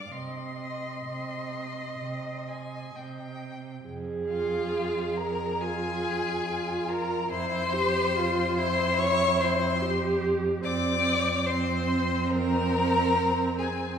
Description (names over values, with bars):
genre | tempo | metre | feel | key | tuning
classical, slow romantic movement for string quartet | 62-74 BPM | 4/4 | rubato | C minor, F minor from 3.9 s | A4 = 440 Hz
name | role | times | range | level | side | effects
rich violin | melody | 0.0-14.0 s | F5 to D6 | -31 LUFS | left 5 dB | none
clear violin | second line | 0.0-14.0 s | F4 to Ab5 | -31 LUFS | left 2 dB | none
warm viola | accompaniment | 0.0-14.0 s | C4 to Eb5 | -30 LUFS | right 3 dB | none
rich cello | bass | 0.1-14.0 s | F2 to C3 | -32 LUFS | right 3 dB | none
room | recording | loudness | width
wet recital hall reverb, RT60 1.5 s | heard from further back in the room | -25 LUFS | side -7 dB against mid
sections
0.0-3.9 A section; 3.9-14.0 B section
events
none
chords
0.1 Cm; 3.9 Fm; 7.3 C/F; 10.6 Fmadd11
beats
| 0.11 1.07 2.01 2.95 | 3.87 4.74 5.61 6.47 | 7.31 8.15 8.98 9.80 | 10.63 11.46 12.29 13.15